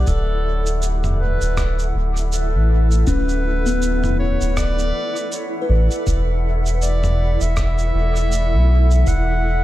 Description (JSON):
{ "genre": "ambient dub", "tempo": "80 BPM", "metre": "4/4", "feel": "swing 58% on 16ths", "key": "unclear", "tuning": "A4 = 440 Hz", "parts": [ { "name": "mellow clarinet", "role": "melody", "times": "0.0-9.6 s", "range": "A4 to F#5", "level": "-26 LUFS", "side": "equal", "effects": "dub echo" }, { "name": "granular cloud pad", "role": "sustained chords", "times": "0.0-9.6 s", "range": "E4 to F#5", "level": "-27 LUFS", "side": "equal", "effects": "built-in reverb" }, { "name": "buzzing kalimba", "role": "arpeggios", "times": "0.0-7.3 s", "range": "B3 to F#5", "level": "-27 LUFS", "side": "left 5 dB", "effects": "dub echo" }, { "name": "round analog bass", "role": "bass", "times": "0.0-9.6 s", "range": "D1 to B1", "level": "-17 LUFS", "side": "equal", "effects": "none" }, { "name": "electronic kick drum", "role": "drums", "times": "0.1-9.2 s", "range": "none", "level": "-23 LUFS", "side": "equal", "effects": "studio reverb" }, { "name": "lo-fi sampler-style drum kit", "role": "drums", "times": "0.1-9.2 s", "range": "rim click, shaker, toms", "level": "-28 LUFS", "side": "right 1 dB", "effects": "studio reverb, dub echo" } ], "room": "digital ambience", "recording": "none", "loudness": "-16 LUFS", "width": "side -15 dB against mid", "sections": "0.0-9.6 A section", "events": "none", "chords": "0.1 Dadd9; 6.1 Esus4", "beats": "| 0.07 0.82 1.57 2.32 | 3.07 3.82 4.57 5.32 | 6.07 6.82 7.57 8.32 | 9.07" }